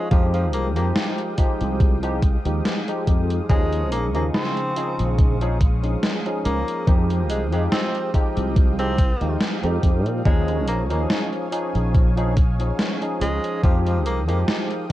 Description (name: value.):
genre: vaporwave.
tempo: 71 BPM.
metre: 4/4.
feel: swing 54% on 16ths.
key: F minor.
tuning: A4 = 441 Hz.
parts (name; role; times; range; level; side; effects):
bright tenor saxophone; melody; 0.0-14.4 s; F3 to C4; -29 LUFS; equal; vintage 12-bit sampler grit, tape echo.
barky tine electric piano; accompaniment; 0.0-14.9 s; Db3 to Ab4; -26 LUFS; left 1 dB; analog chorus, vintage 12-bit sampler grit, tape echo.
lush unison pad; sustained chords; 0.0-14.9 s; Ab3 to Eb6; -35 LUFS; right 2 dB; chorus.
sustaining fretless electric bass; bass; 0.1-14.4 s; Bb1 to Bb2; -22 LUFS; equal; ensemble chorus.
electronic kick drum; drums; 0.1-13.8 s; none; -17 LUFS; equal; none.
gated 80s digital drum machine; drums; 0.1-14.9 s; hi-hat, snare drum; -26 LUFS; equal; gated reverb, gated reverb snare.
room: digital ambience.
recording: dark, warm production, cassette tape.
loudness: -19 LUFS.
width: side -14 dB against mid.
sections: 0.0-14.9 A section.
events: none.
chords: 0.1 Fm9; 3.5 Eb9sus4; 6.9 Fm9; 10.3 Eb9sus4; 13.6 Fm9.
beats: | 0.12 0.96 1.80 2.65 | 3.50 4.34 5.19 6.03 | 6.88 7.72 8.57 9.41 | 10.26 11.10 11.95 12.79 | 13.64 14.48.